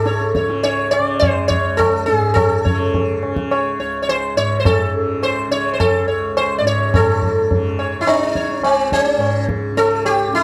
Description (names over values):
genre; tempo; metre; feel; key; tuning
indian classical, Hindustani; 105 BPM; 4/4; straight; C# raga todi; A4 = 440 Hz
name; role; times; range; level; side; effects
sitar; melody; 0.0-10.4 s; B#3 to D5; -19 LUFS; equal; none
tanpura; drone; 0.0-10.4 s; C#2 to C#3; -26 LUFS; equal; none
tabla; percussion; 0.1-10.4 s; none; -23 LUFS; equal; none
room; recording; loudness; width
moderate small room reverb, RT60 0.5 s; dark, warm production; -17 LUFS; mono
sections
0.0-6.9 A section; 6.9-10.4 B section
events
none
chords
none